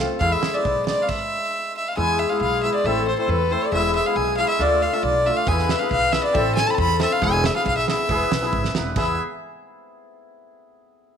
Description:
klezmer; 137 BPM; 2/4; straight; E phrygian dominant; A4 = 440 Hz
clear clarinet; second line; 0.0-9.2 s; G#4 to B4; -26 LUFS; left 7 dB
hammered dulcimer; accompaniment; 0.0-9.2 s; G#3 to B4; -26 LUFS; equal
upright bass; bass; 0.0-9.2 s; E1 to E2; -26 LUFS; equal
clear violin; melody; 0.2-9.2 s; B4 to B5; -22 LUFS; equal
loose indie drum kit; drums; 0.2-1.2, 5.5-9.1 s; crash cymbal, kick drum, snare drum; -26 LUFS; right 4 dB
moderate echo chamber reverb, RT60 1.4 s, studio reverb; 1960s-style stereo; -18 LUFS; side -7 dB against mid
0.0-2.0 A section; 2.0-9.0 B section
stop 1.1-2.0
0.2 E; 2.8 Am; 3.7 E; 4.6 Dm; 5.5 E; 6.3 Am; 7.2 E
| 0.21 0.65 | 1.09 1.53 | 1.97 2.41 | 2.85 3.29 | 3.72 4.16 | 4.60 5.04 | 5.47 5.91 | 6.35 6.78 | 7.22 7.66 | 8.09 8.53 | 8.96

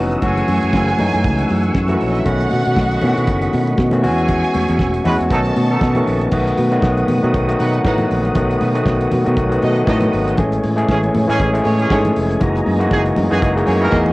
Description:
disco; 118 BPM; 4/4; swing 56% on 16ths; A4 = 440 Hz
overdriven tine electric piano; accompaniment; 0.0-14.1 s; D#3 to G#4; -18 LUFS; left 1 dB
mellow tonewheel organ; sustained chords; 0.0-14.1 s; A3 to E6; -26 LUFS; right 1 dB; chorus vibrato, slow rotary speaker
fingered electric bass; bass; 0.0-14.1 s; E1 to B2; -19 LUFS; equal
damped 70s drum kit; drums; 0.1-14.1 s; crash cymbal, hi-hat, kick drum, snare drum; -21 LUFS; equal; cassette tape
warm studio violin section; second line; 0.2-14.1 s; A3 to A5; -24 LUFS; right 2 dB; analog delay
congas; percussion; 0.2-14.1 s; -26 LUFS; left 2 dB
warm horn section; stabs; 5.0-6.0, 10.9-14.0 s; E3 to B4; -22 LUFS; right 2 dB
little or no reverb; home recording on cassette; -14 LUFS; side -20 dB against mid
0.0-6.3 A section; 6.3-14.1 B section
band accent 4.3-6.3; drum fill 13.9
0.2 F#m7; 2.3 B9; 4.0 E69; 5.3 B9; 6.3 B7; 10.4 Amaj7; 12.4 F#13
| 0.23 0.73 1.24 1.75 | 2.26 2.76 3.27 3.78 | 4.29 4.79 5.30 5.81 | 6.32 6.83 7.33 7.84 | 8.35 8.86 9.37 9.87 | 10.38 10.89 11.39 11.90 | 12.41 12.91 13.42 13.92

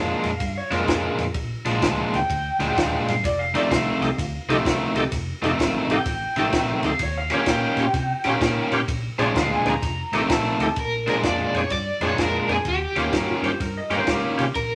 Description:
electric blues shuffle; 127 BPM; 4/4; swing 64% on 8ths; Bb mixolydian; A4 = 439 Hz
electric slide guitar; second line; 0.0-14.5 s; G4 to Bb5; -30 LUFS; equal
crunchy overdriven guitar; riff; 0.0-14.4 s; F2 to G4; -26 LUFS; equal
vintage muted fingered electric bass; bass; 0.0-14.8 s; F1 to C3; -33 LUFS; equal
compact cocktail drum kit; drums; 0.2-14.7 s; kick drum, ride cymbal, snare drum; -30 LUFS; equal
bright tonewheel organ; accompaniment; 3.5-14.5 s; A3 to A4; -28 LUFS; equal; overdrive, chorus vibrato, slow rotary speaker
overdriven semi-hollow guitar; melody; 10.8-14.8 s; G4 to D5; -28 LUFS; equal; tremolo
wet club reverb, RT60 0.7 s; -23 LUFS; mono
0.0-10.8 A section; 10.8-14.8 B section
electric slide guitar solo 0.0-10.8
0.0 Bb7; 3.2 F7; 7.0 Eb7; 8.9 Bb7; 9.8 F7; 10.8 Bb7; 12.7 Eb7
0.41 0.88 | 1.35 1.82 2.29 2.76 | 3.23 3.71 4.18 4.65 | 5.12 5.59 6.06 6.53 | 7.00 7.47 7.94 8.41 | 8.88 9.36 9.83 10.30 | 10.77 11.24 11.71 12.19 | 12.66 13.13 13.60 14.08 | 14.55

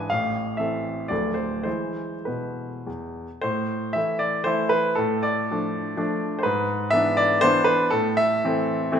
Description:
classical, romantic triple-time dance for piano with dotted rhythms; 94-135 BPM; 3/4; rubato; A minor; A4 = 440 Hz
clear baby grand piano; solo; 0.0-9.0 s; D1 to F5; -21 LUFS; equal
wet recital hall reverb, RT60 1.6 s; -21 LUFS; side -8 dB against mid
0.0-3.4 A section; 3.4-9.0 B section
0.1 Am; 1.1 Dm; 1.7 E; 3.4 Am; 5.0 Dm/A; 6.5 E7/G#; 7.9 Am
| 0.12 0.60 1.11 | 1.66 2.28 2.87 | 3.43 3.96 4.47 | 4.98 5.51 6.00 | 6.45 6.95 7.44 | 7.93 8.45 8.91

